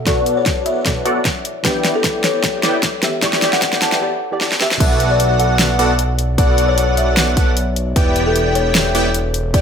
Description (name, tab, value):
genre	future bass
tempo	152 BPM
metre	4/4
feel	swing 54% on 16ths, half-time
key	B minor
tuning	A4 = 438 Hz
part	soft round pluck	accompaniment	0.0-4.8 s	B2 to C#6	-25 LUFS	right 1 dB	ensemble chorus, sidechain pumping, ping-pong delay
part	buzzing kalimba	melody	0.1-9.6 s	A4 to A5	-20 LUFS	left 3 dB	vintage 12-bit sampler grit, sidechain pumping
part	supersaw stab	riff	0.1-9.6 s	B3 to G5	-20 LUFS	right 1 dB	sidechain pumping, low-pass filter
part	electronic kick drum	drums	0.1-9.6 s	none	-18 LUFS	equal	none
part	pop drum kit	drums	0.1-9.6 s	crash cymbal, hi-hat, snare drum	-18 LUFS	equal	none
part	airy dreamy lead	arpeggios	4.8-9.6 s	F#5 to G5	-25 LUFS	right 1 dB	chorus, cassette tape, sidechain pumping
part	fat analog bass	bass	4.8-9.6 s	E1 to B1	-19 LUFS	equal	tube saturation, sidechain pumping
room	light reverb, digital ambience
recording	high-pass filter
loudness	-14 LUFS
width	side -7 dB against mid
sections	0.0-4.8 A section; 4.8-9.6 B section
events	build-up 0.0-4.8; drum fill 0.0-4.0, 4.4-4.8; filter sweep on supersaw synth 0.0-4.8; filter sweep 0.0-4.8; break 4.0-4.8; drop 4.8-9.6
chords	0.0 Bm7; 1.6 Em7; 4.8 Bm7; 8.0 Em7